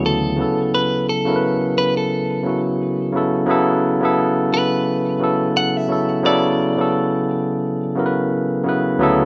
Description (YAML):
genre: R&B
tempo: 87 BPM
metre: 4/4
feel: swing 57% on 16ths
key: unclear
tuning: A4 = 438 Hz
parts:
  - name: clean electric guitar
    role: melody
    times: 0.0-8.6 s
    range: A4 to F#5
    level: -25 LUFS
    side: equal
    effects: none
  - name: barky tine electric piano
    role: accompaniment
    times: 0.0-9.3 s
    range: D2 to B4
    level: -20 LUFS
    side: equal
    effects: none
room: moderate plate reverb, RT60 2.2 s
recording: rough home demo mix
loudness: -19 LUFS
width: mono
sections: 0.0-9.3 A section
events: none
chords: 0.4 F#m7; 3.5 B9sus4; 6.2 E9sus4